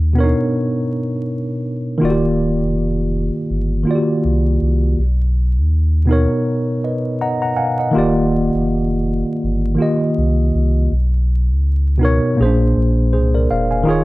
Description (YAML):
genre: lo-fi hip hop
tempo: 81 BPM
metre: 4/4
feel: swing 57% on 16ths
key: Eb major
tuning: A4 = 440 Hz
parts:
  - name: warm sub bass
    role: bass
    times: 0.0-14.0 s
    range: Eb1 to D#2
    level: -16 LUFS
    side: equal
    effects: none
  - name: mellow tine electric piano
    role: accompaniment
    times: 0.1-14.0 s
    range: Bb2 to A#5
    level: -16 LUFS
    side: equal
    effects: medium stereo tremolo, low-pass filter
room: light reverb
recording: dark, warm production, vinyl crackle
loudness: -15 LUFS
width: side -19 dB against mid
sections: 0.0-13.9 A section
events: tine electric piano fill 6.8-7.9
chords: 0.0 Bmaj9; 2.0 Ebmaj9; 5.0 Bmaj9; 7.9 Ebmaj9; 10.9 Bmaj9; 12.4 Bb7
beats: 0.54 1.27 | 2.02 2.76 3.50 4.24 | 4.98 5.72 6.46 7.20 | 7.94 8.68 9.42 10.16 | 10.90 11.65 12.39 13.13 | 13.87